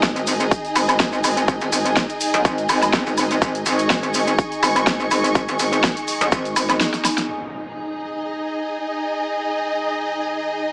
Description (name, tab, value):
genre	bass house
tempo	124 BPM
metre	4/4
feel	swing 55% on 16ths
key	unclear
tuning	A4 = 440 Hz
part	deep dark ambient pad	sustained chords	0.3-10.7 s	D#4 to G#5	-30 LUFS	equal	chorus, built-in reverb, sidechain pumping
part	metallic wobble bass	bass	0.0-6.8 s	G#1 to B1	-24 LUFS	equal	chorus, sidechain pumping
part	big-room dance drum kit	drums	0.0-7.3 s	hi-hat, snare drum, woodblock	-24 LUFS	equal	overdrive, low-pass filter on hats, low-pass filter on snare, low-pass filter on perc
part	electronic kick drum	drums	0.0-6.4 s	none	-23 LUFS	equal	overdrive
part	tube shaker	percussion	0.0-7.3 s	none	-33 LUFS	equal	none
part	warm symphonic string section	texture	0.0-10.7 s	D#4 to C#6	-26 LUFS	equal	sidechain pumping
part	impact	sound effects	7.3-9.2 s	none	-40 LUFS	equal	none
room	moderate digital room reverb, RT60 1.1 s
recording	small speaker sound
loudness	-20 LUFS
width	mono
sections	0.0-7.3 A section; 7.3-10.7 B section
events	drop 0.0-7.3; drum fill 6.9-7.3; impact 7.3-9.2; filter sweep on ambient pad 7.3-10.7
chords	0.0 G#5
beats	0.03 0.51 1.00 | 1.48 1.97 2.45 2.93 | 3.42 3.90 4.38 4.87 | 5.35 5.84 6.32 6.80 | 7.29 7.77 8.26 8.74 | 9.22 9.71 10.19 10.68